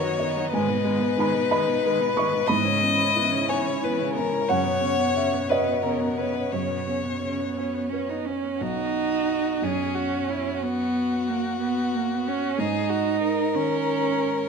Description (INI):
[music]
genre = neoclassical piano and strings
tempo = 60 BPM (dotted quarters)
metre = 6/8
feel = rubato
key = B major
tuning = A4 = 439 Hz
[part]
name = clear violin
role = melody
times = 0.0-14.5 s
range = E4 to D#5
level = -26 LUFS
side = left 8 dB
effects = none
[part]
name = clear cello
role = second line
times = 0.0-14.5 s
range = B2 to D#4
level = -27 LUFS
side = right 4 dB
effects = none
[part]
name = felt-muted upright piano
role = accompaniment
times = 0.0-14.5 s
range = B1 to C#6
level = -27 LUFS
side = right 2 dB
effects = none
[part]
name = rich viola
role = accompaniment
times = 0.0-8.6 s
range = F#3 to C#4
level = -32 LUFS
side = right 4 dB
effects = none
[part]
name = rich chamber string section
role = sustained chords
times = 0.0-8.6 s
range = B3 to D#5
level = -34 LUFS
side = equal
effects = none
[sound]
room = moderate scoring stage reverb, RT60 1.8 s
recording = minimal, uncompressed stereo recording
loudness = -22 LUFS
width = side -5 dB against mid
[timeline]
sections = 0.0-8.6 A section; 8.6-14.5 B section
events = none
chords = 0.0 B/F#; 0.5 G#m; 2.5 C#m7/G#; 4.5 F#sus4; 8.6 B; 12.6 G#5